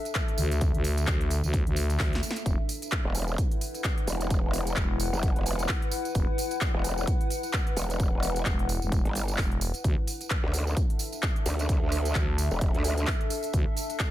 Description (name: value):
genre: bass house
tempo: 130 BPM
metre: 4/4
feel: swing 57% on 16ths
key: unclear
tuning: A4 = 443 Hz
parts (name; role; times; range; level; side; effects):
- warbly tape-like pad; texture; 0.0-14.1 s; D4 to F#5; -35 LUFS; left 2 dB; chorus, built-in reverb, sidechain pumping
- big-room dance drum kit; drums; 0.1-14.1 s; handclaps, hi-hat, snare drum; -34 LUFS; equal; none
- tambourine; percussion; 0.1-14.1 s; none; -39 LUFS; right 6 dB; none
- electronic kick drum; drums; 0.2-14.1 s; none; -28 LUFS; equal; none
- growling FM bass; bass; 0.4-13.6 s; E1 to D2; -28 LUFS; equal; sidechain pumping
- growl bass; bass; 3.1-13.1 s; E1 to D2; -28 LUFS; equal; chorus, tube saturation, sidechain pumping
room: digital ambience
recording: none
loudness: -25 LUFS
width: side -14 dB against mid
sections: 0.0-14.1 A section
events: drum fill 2.0-2.5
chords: 0.0 D5; 2.5 E5